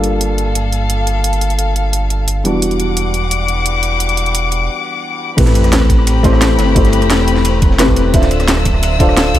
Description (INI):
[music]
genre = liquid drum and bass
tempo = 174 BPM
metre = 4/4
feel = straight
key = A minor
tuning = A4 = 440 Hz
[part]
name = dark concert grand piano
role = accompaniment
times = 0.0-9.4 s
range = E3 to F5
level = -18 LUFS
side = left 2 dB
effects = digital delay
[part]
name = rich chamber string section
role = sustained chords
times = 0.0-9.4 s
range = G3 to E6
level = -20 LUFS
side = left 6 dB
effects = sidechain pumping
[part]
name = dark detuned saw bass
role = bass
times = 0.0-9.4 s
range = D1 to C2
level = -15 LUFS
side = right 1 dB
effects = none
[part]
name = drum and bass drum kit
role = drums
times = 0.0-9.4 s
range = crash cymbal, hi-hat, rim click, snare drum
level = -18 LUFS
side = right 1 dB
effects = overdrive
[part]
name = crunchy breakbeat drum kit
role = drums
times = 5.4-9.4 s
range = ride cymbal, snare drum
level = -25 LUFS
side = equal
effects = high-pass filter on cymbals, high-pass filter on snare, high-pass filter on room
[part]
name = electronic kick drum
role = drums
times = 5.4-9.1 s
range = none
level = -14 LUFS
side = right 1 dB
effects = overdrive
[part]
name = sub drop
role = sound effects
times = 5.4-6.8 s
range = none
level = -21 LUFS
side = right 1 dB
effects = none
[sound]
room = light reverb, small room ambience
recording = none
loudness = -11 LUFS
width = side -12 dB against mid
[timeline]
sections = 0.0-5.4 A section; 5.4-9.4 B section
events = break 4.7-5.4; drop 5.4-9.4; impact 5.4-6.8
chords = 0.0 Gm9; 2.4 Em9; 5.4 Am9; 8.1 Dm9